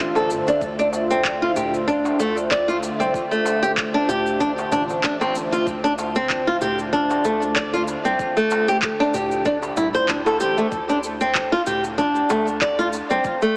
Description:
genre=organic downtempo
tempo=95 BPM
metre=4/4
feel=swing 55% on 16ths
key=D minor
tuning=A4 = 438 Hz
part: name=warm analog pad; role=sustained chords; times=0.0-10.7 s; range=D3 to E5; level=-28 LUFS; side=equal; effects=chorus, sidechain pumping
part: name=flamenco guitar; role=arpeggios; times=0.0-13.6 s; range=A3 to D5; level=-19 LUFS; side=equal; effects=tape echo
part: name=round analog bass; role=bass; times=0.0-13.2 s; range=A1 to G2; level=-35 LUFS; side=equal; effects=none
part: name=electronic shaker and handclaps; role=drums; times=0.2-13.5 s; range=none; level=-28 LUFS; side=equal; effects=overdrive
part: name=darbuka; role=percussion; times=0.2-13.2 s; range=none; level=-33 LUFS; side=equal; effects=none
part: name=electronic kick drum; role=drums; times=0.6-13.4 s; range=none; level=-35 LUFS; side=equal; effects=none
room=moderate huge ambient reverb, RT60 8.2 s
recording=heavily compressed radio sound, small speaker sound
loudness=-18 LUFS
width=side -31 dB against mid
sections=0.0-10.7 A section; 10.7-13.6 A section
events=none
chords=0.0 Dm7; 10.7 D7(no3)

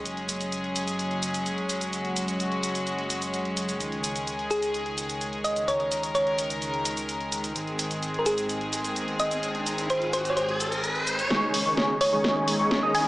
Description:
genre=EDM, festival progressive house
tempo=128 BPM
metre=4/4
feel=straight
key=unclear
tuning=A4 = 441 Hz
part: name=rich studio string section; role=sustained chords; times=0.0-13.1 s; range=Db3 to Bb4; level=-30 LUFS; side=equal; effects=low-pass filter
part: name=wide detuned saw bass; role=bass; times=0.0-11.3 s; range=Gb1 to Db2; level=-41 LUFS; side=equal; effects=chorus
part: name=house drum kit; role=drums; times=0.1-13.0 s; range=hi-hat, shaker, snare drum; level=-32 LUFS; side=equal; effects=none
part: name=thumb-piano-like synth pluck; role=melody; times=4.5-13.1 s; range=Ab4 to Ab5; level=-27 LUFS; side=equal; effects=chorus, tape echo
part: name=riser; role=sound effects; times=8.8-13.1 s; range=none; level=-32 LUFS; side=equal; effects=none
part: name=wide unison lead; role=arpeggios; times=11.3-13.1 s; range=Db6 to Eb6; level=-27 LUFS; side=equal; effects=lush chorus, tape echo
part: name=supersaw chords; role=riff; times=11.3-13.1 s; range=Eb3 to Eb5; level=-26 LUFS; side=equal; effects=ensemble chorus, low-pass filter
room=moderate concert hall reverb, RT60 2.5 s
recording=small speaker sound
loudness=-25 LUFS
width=side -18 dB against mid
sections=0.0-11.3 A section; 11.3-13.1 B section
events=riser 8.8-11.3, 11.3-13.1; build-up 11.3-13.1; drum fill 11.3-13.1; filter sweep on supersaw synth 11.3-13.1; filter sweep 11.3-13.1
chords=0.1 Gbsus2; 3.8 Dbsus2; 7.6 Ab; 11.3 Dbsus2

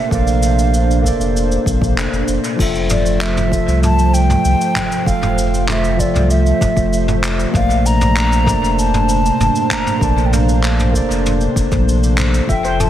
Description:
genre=sunset chillout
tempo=97 BPM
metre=4/4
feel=straight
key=unclear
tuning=A4 = 440 Hz
part: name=mellow hollow silver concert flute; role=melody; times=0.0-12.9 s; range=D5 to Bb5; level=-21 LUFS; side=equal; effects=dub echo
part: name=barky tine electric piano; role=accompaniment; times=0.0-12.9 s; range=F3 to F5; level=-20 LUFS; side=moving between left 6 dB and right 8 dB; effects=overdrive, auto-pan, analog delay
part: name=airy breathy pad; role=sustained chords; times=0.0-12.9 s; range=Bb2 to E5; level=-22 LUFS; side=right 1 dB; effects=chorus
part: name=warm sub bass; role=bass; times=0.1-12.9 s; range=F1 to C2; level=-16 LUFS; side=equal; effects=none
part: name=electronic kick drum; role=drums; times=0.1-12.6 s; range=none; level=-20 LUFS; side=equal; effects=none
part: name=soft brush drum kit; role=drums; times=0.1-12.9 s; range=cabasa, crash cymbal, handclaps, toms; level=-22 LUFS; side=equal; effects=analog delay
part: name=steel pan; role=arpeggios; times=12.5-12.9 s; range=A4 to E5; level=-22 LUFS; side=equal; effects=vintage 12-bit sampler grit, analog delay
room=light reverb, studio reverb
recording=echo-heavy mix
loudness=-13 LUFS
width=side -11 dB against mid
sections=0.0-2.6 A section; 2.6-12.9 B section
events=filter sweep on tine electric piano 0.0-2.6; break 2.0-2.6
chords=0.0 Bbmaj9; 2.6 Fmaj7; 7.5 Bbmaj9

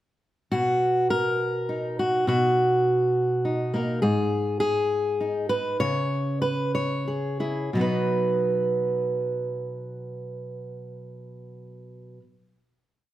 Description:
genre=folk, solo fingerstyle acoustic guitar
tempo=59-68 BPM (dotted quarters)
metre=6/8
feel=straight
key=B major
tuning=A4 = 440 Hz
part: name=fingerpicked steel-string acoustic guitar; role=solo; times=0.5-12.2 s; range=G#2 to C#5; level=-23 LUFS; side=equal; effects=none
room=moderate large studio reverb, RT60 1.2 s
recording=none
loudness=-22 LUFS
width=side -14 dB against mid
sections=0.5-7.7 A section; 7.7-11.8 final chord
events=slowing down 4.0-7.7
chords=0.5 Bmaj7; 4.0 G#5; 5.8 C#m; 7.7 B

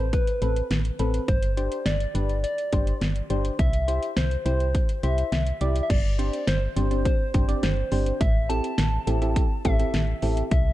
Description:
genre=synth-pop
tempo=104 BPM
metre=4/4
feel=straight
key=A minor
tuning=A4 = 440 Hz
part: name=soft struck synth lead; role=melody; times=0.0-10.7 s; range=B4 to A5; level=-30 LUFS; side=left 1 dB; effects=chorus, tape echo
part: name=soft electric-piano-like synth keys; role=accompaniment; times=0.0-10.4 s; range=C4 to D5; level=-30 LUFS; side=equal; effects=chorus
part: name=solid FM bass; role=bass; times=0.0-10.7 s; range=G1 to C2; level=-25 LUFS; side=equal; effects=none
part: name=pop drum kit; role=drums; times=0.1-10.6 s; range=crash cymbal, hi-hat, kick drum, snare drum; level=-26 LUFS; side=equal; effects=none
room=light reverb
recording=dark, warm production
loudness=-22 LUFS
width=side -15 dB against mid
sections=0.0-5.9 A section; 5.9-10.7 B section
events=none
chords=0.0 Amadd9; 1.3 Gsus4; 3.6 C; 5.9 Gsus4; 8.2 Am7

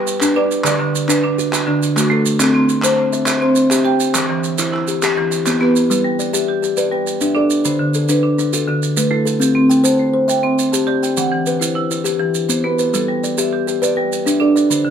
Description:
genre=southern african traditional, mbira-style interlocking cycle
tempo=136 BPM (dotted quarters)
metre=12/8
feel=straight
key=G major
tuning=A4 = 441 Hz
part: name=kalimba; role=arpeggios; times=0.0-14.9 s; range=D3 to G5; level=-17 LUFS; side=left 4 dB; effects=none
part: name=marimba with hard mallets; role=arpeggios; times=0.0-14.9 s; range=D3 to A5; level=-18 LUFS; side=right 4 dB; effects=none
part: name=maracas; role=percussion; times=0.1-14.8 s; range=none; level=-23 LUFS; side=right 7 dB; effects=none
part: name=group handclap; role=percussion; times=0.2-5.7 s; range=none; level=-23 LUFS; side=equal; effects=none
room=wet studio ambience, RT60 0.5 s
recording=none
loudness=-14 LUFS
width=side -8 dB against mid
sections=0.0-5.9 A section; 5.9-14.9 A section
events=none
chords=0.0 G; 0.7 D; 2.4 C; 4.1 Em; 5.9 G; 7.7 D; 9.4 C; 11.2 Em; 12.9 G

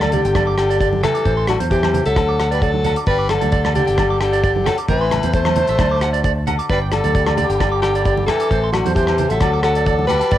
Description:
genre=highlife guitar band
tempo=132 BPM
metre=4/4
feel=straight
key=G major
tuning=A4 = 440 Hz
part: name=clear alto saxophone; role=melody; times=0.0-10.4 s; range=F#4 to C5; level=-20 LUFS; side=equal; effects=cassette tape
part: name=raspy tenor saxophone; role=second line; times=0.0-10.4 s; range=D3 to A3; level=-26 LUFS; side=left 8 dB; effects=analog delay
part: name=nylon-string guitar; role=accompaniment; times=0.0-10.4 s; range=G2 to A4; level=-32 LUFS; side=left 6 dB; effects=none
part: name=electric guitar at the edge of break-up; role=arpeggios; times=0.0-10.4 s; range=C5 to D6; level=-24 LUFS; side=right 8 dB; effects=analog delay
part: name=fingered electric bass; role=bass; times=0.0-10.4 s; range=G1 to E2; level=-21 LUFS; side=equal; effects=none
part: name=damped 70s drum kit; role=drums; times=0.0-10.4 s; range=hi-hat, kick drum, rim click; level=-23 LUFS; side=equal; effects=cassette tape
part: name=agogo bells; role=percussion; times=0.0-10.2 s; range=none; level=-27 LUFS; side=left 10 dB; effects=none
part: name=congas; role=percussion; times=0.0-10.2 s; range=none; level=-26 LUFS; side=right 7 dB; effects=none
part: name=mellow hollow large flute ensemble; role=sustained chords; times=6.7-10.4 s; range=E5 to D6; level=-30 LUFS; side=right 4 dB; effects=none
room=light reverb, small room ambience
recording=home recording on cassette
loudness=-15 LUFS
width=side -12 dB against mid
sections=0.0-10.4 A section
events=none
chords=0.0 G5; 1.3 Am; 2.2 D; 3.1 G5; 4.9 Am; 5.8 D; 6.7 G; 8.5 Am; 9.4 D

